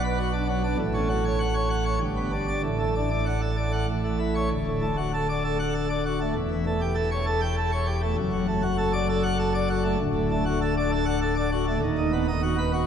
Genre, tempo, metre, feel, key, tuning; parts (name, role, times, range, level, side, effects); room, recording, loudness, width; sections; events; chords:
classical, organ toccata; 99 BPM; 3/4; straight; D major; A4 = 440 Hz
pipe organ, plenum; solo; 0.0-12.9 s; D1 to G5; -23 LUFS; equal
wet church reverb, RT60 3.2 s; minimal, uncompressed stereo recording; -23 LUFS; side -8 dB against mid
0.0-4.5 A section; 4.5-12.9 B section
0.0 Bm; 0.8 F#m/A; 2.0 G; 2.6 D/A; 3.9 A; 4.5 D; 6.4 A7/E; 8.2 D/F#; 10.0 D; 11.8 B/D#